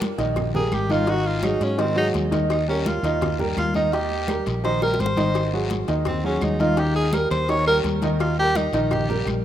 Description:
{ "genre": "Afro-Cuban jazz", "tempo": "169 BPM", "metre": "4/4", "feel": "straight", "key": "Eb mixolydian", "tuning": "A4 = 438 Hz", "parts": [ { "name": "warm baby grand piano", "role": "accompaniment", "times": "0.0-9.4 s", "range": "Eb3 to Eb5", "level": "-24 LUFS", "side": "right 1 dB", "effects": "none" }, { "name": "congas", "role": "percussion", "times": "0.0-9.4 s", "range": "none", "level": "-29 LUFS", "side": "left 2 dB", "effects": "none" }, { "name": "cowbell and bongos", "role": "percussion", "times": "0.0-9.4 s", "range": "none", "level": "-34 LUFS", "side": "left 8 dB", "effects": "none" }, { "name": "guiro", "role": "percussion", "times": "0.0-9.4 s", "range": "none", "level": "-38 LUFS", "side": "left 7 dB", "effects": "none" }, { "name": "mellow fretless electric bass", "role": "bass", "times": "0.2-9.4 s", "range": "Ab1 to Ab2", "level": "-26 LUFS", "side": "equal", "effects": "none" }, { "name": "claves", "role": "percussion", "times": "0.4-9.4 s", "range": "none", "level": "-43 LUFS", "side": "right 6 dB", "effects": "none" }, { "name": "clear tenor saxophone", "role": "melody", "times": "0.6-9.3 s", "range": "C4 to Db5", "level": "-25 LUFS", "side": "equal", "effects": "none" } ], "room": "moderate lush hall reverb, RT60 2.9 s", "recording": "rough home demo mix", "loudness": "-19 LUFS", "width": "side -11 dB against mid", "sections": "0.0-9.4 A section", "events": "tenor saxophone solo 0.0-9.4; drum fill 4.8-5.4", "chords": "0.0 Eb; 1.1 Ab5; 2.5 Ebadd9; 5.4 Ab5; 6.8 Eb" }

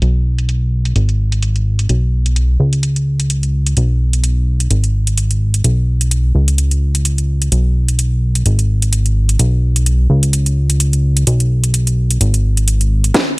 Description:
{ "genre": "piano house", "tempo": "128 BPM", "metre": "4/4", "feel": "swing 56% on 16ths", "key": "unclear", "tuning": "A4 = 440 Hz", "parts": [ { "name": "fat analog bass", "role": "bass", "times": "0.0-13.1 s", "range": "G#1 to C#2", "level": "-13 LUFS", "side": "equal", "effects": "sidechain pumping" }, { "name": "house drum kit", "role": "drums", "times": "0.0-13.2 s", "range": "hi-hat, snare drum", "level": "-20 LUFS", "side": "equal", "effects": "overdrive, low-pass filter on hats, low-pass filter on snare, low-pass filter on room" }, { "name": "electronic kick drum", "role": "drums", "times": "13.1-13.2 s", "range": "none", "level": "-16 LUFS", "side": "equal", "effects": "overdrive, high-pass filter on kick, high-pass filter on room" } ], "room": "little or no reverb", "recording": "none", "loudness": "-12 LUFS", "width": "side -26 dB against mid", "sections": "0.0-13.1 A section", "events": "drum fill 13.1", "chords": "none" }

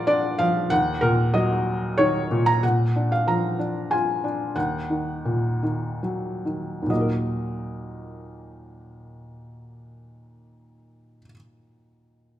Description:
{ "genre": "classical, lyrical solo piano", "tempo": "64-96 BPM", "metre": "3/4", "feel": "rubato", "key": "Eb minor", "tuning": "A4 = 439 Hz", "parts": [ { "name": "felt-muted upright piano", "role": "solo", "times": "0.0-12.4 s", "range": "Eb2 to Bb5", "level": "-21 LUFS", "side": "equal", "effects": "none" } ], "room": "moderate recital hall reverb, RT60 1.6 s", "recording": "minimal, uncompressed stereo recording", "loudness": "-21 LUFS", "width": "side -12 dB against mid", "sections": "0.0-2.6 A section; 2.6-6.9 B section; 6.9-12.3 C section", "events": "slowing down 2.6-6.9", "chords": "0.0 Bb; 0.7 Ebm; 2.6 Bb; 4.6 Ebm" }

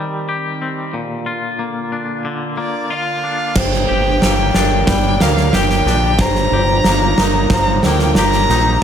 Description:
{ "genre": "post-rock", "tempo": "91 BPM", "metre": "4/4", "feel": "straight", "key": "G minor", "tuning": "A4 = 441 Hz", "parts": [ { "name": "lush unison pad", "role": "sustained chords", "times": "0.0-8.8 s", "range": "D3 to G4", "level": "-27 LUFS", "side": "right 1 dB", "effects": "chorus" }, { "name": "twangy electric guitar", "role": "arpeggios", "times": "0.0-8.8 s", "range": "G2 to G4", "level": "-22 LUFS", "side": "left 4 dB", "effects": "tremolo, analog delay" }, { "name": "rich violin", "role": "melody", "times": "2.6-8.8 s", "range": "D5 to Bb5", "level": "-18 LUFS", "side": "left 2 dB", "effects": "analog delay" }, { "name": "vibraphone with medium hard mallets", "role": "arpeggios", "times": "3.6-8.5 s", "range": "Bb4 to D5", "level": "-23 LUFS", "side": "right 4 dB", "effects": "analog delay" }, { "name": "growling fingered electric bass", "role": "bass", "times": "3.6-8.8 s", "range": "G1 to D2", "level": "-18 LUFS", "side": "equal", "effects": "overdrive" }, { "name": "huge arena drum kit", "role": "drums", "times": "3.6-8.6 s", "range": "crash cymbal, kick drum, snare drum", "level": "-16 LUFS", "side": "right 1 dB", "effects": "none" } ], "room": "light reverb, studio reverb", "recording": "none", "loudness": "-14 LUFS", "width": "side -8 dB against mid", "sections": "0.0-3.6 A section; 3.6-8.8 B section", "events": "none", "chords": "0.0 Cm; 0.9 Bb; 3.6 Gm; 6.2 Ebadd9/G" }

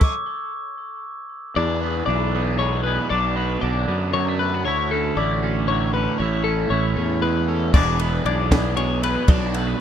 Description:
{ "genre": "math rock and midwest emo", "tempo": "78 BPM (dotted quarters)", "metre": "6/8", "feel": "straight", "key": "unclear", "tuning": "A4 = 440 Hz", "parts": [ { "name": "glockenspiel with soft plastic mallets", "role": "melody", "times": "0.0-0.6 s", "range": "D6", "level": "-32 LUFS", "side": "equal", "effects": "tape echo" }, { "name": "compact cocktail drum kit", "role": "drums", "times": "0.0-0.1, 7.7-9.7 s", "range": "crash cymbal, kick drum, ride cymbal, snare drum", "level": "-18 LUFS", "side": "equal", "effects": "none" }, { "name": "twangy electric guitar", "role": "accompaniment", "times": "1.6-9.8 s", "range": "D2 to E4", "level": "-26 LUFS", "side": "right 9 dB", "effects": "none" }, { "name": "twelve-string electric guitar", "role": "arpeggios", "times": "1.6-9.8 s", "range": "A4 to D5", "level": "-25 LUFS", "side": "left 9 dB", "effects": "tape echo" }, { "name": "crunchy overdriven guitar", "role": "riff", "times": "1.6-9.8 s", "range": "D3 to B4", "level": "-28 LUFS", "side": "right 1 dB", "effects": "phaser" }, { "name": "fuzz fingered electric bass", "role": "bass", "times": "1.6-9.7 s", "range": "E1 to F#2", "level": "-24 LUFS", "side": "equal", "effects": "overdrive" } ], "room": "small room ambience", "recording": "rough home demo mix", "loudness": "-19 LUFS", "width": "side -9 dB against mid", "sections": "0.0-1.6 A section; 1.6-9.8 B section", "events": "stop 0.0-1.6", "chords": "0.0 N.C.; 1.6 E7; 3.1 Bm7; 4.7 Dmaj9; 6.2 Amaj7; 7.7 E7; 9.3 Bm7" }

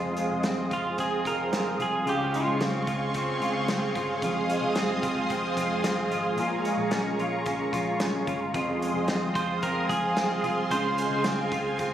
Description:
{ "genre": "dream pop", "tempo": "111 BPM", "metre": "4/4", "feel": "straight", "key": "F minor", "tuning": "A4 = 440 Hz", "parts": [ { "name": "string machine, cellos", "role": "sustained chords", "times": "0.0-11.9 s", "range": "Ab4 to Eb6", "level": "-29 LUFS", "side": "right 2 dB", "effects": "ensemble chorus" }, { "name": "semi-hollow electric guitar", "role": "arpeggios", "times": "0.0-11.9 s", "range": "F2 to F4", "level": "-29 LUFS", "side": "left 1 dB", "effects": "ensemble chorus, tape echo" }, { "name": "vintage muted picked electric bass", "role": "bass", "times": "0.0-11.9 s", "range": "F1 to Db2", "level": "-37 LUFS", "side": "equal", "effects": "none" }, { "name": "loose indie drum kit", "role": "drums", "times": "0.2-11.9 s", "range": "hi-hat, kick drum, snare drum", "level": "-32 LUFS", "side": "equal", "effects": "none" }, { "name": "electric guitar at the edge of break-up", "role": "melody", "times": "0.7-3.9, 9.4-11.9 s", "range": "F4 to C5", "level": "-30 LUFS", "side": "right 2 dB", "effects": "tape echo" } ], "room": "wet concert hall reverb, RT60 2.2 s", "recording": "recorded on a phone in the room, compression", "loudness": "-25 LUFS", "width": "side -10 dB against mid", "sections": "0.0-11.9 A section", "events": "none", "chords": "0.0 Fm7; 2.1 Dbmaj7; 4.2 Fm7; 6.4 Bbm7; 8.5 Fm7; 10.7 Dbmaj7" }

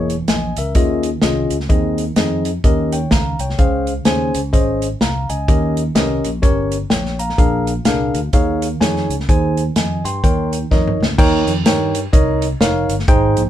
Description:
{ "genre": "uptempo gospel", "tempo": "127 BPM", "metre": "4/4", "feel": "swing 61% on 8ths", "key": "unclear", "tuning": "A4 = 441 Hz", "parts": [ { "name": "bright tine electric piano", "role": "accompaniment", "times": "0.0-13.5 s", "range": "Ab2 to C6", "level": "-18 LUFS", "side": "equal", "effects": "none" }, { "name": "fingered electric bass", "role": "bass", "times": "0.0-13.5 s", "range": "Fb1 to G2", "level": "-22 LUFS", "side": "equal", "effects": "none" }, { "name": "warm soul drum kit", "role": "drums", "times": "0.1-13.5 s", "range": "crash cymbal, hi-hat, kick drum, snare drum, toms", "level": "-16 LUFS", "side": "equal", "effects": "none" } ], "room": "moderate studio reverb, RT60 0.5 s", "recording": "band playing live in one room", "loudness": "-14 LUFS", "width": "side -11 dB against mid", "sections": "0.0-11.2 A section; 11.2-13.5 B section", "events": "drum fill 10.7-11.2", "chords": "0.0 Dbm6/Fb; 0.8 Eb9sus4; 1.7 Ab/Eb; 2.6 Eb7; 3.6 Dbmaj7; 5.5 Eb7; 7.4 Bb7; 8.3 Eb9sus4; 9.3 Ab/Eb; 10.2 Eb7" }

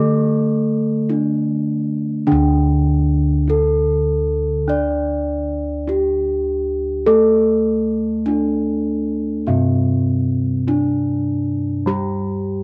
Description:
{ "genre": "Javanese gamelan", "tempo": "50 BPM", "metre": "4/4", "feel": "straight", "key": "unclear", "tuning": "A4 = 440 Hz", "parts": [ { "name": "gamelan-type bronze metallophone", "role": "melody", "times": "0.0-12.6 s", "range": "C4-25c to D5", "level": "-23 LUFS", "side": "equal", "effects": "none" }, { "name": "gamelan-type bronze metallophone", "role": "accompaniment", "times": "0.0-12.6 s", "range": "C3-25c to D4", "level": "-23 LUFS", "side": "equal", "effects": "none" }, { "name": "gamelan-type bossed gongs", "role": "bass", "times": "0.0-12.6 s", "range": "D2 to A4", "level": "-24 LUFS", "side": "equal", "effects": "none" } ], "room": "moderate spring reverb, RT60 1.6 s, studio reverb", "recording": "none", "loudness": "-19 LUFS", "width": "mono", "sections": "0.0-2.3 A section; 2.3-12.6 B section", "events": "none", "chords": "none" }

